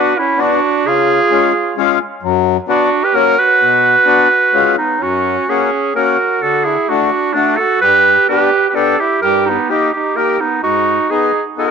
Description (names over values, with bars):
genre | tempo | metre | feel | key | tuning
alpine folk, alpine dance band | 129 BPM | 3/4 | straight | unclear | A4 = 439 Hz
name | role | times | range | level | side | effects
bright clarinet | melody | 0.0-11.7 s | D4 to B4 | -13 LUFS | right 1 dB | none
clear trumpet | second line | 0.0-11.7 s | A3 to G4 | -18 LUFS | right 11 dB | none
accordion | accompaniment | 0.0-11.7 s | F#2 to G#4 | -17 LUFS | left 11 dB | none
room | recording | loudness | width
wet spring reverb, RT60 1.9 s | 1960s-style stereo with parts hard left and right, nothing above 8.0 kHz | -11 LUFS | side -6 dB against mid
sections
0.0-5.0 A section; 5.0-11.7 B section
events
none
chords
0.0 Bm; 0.9 C#; 2.2 Bm/F#; 3.1 F#; 3.6 Bm; 4.5 C#7; 5.0 F#add9; 6.4 D; 7.8 G; 9.2 D#/G; 10.6 G#m7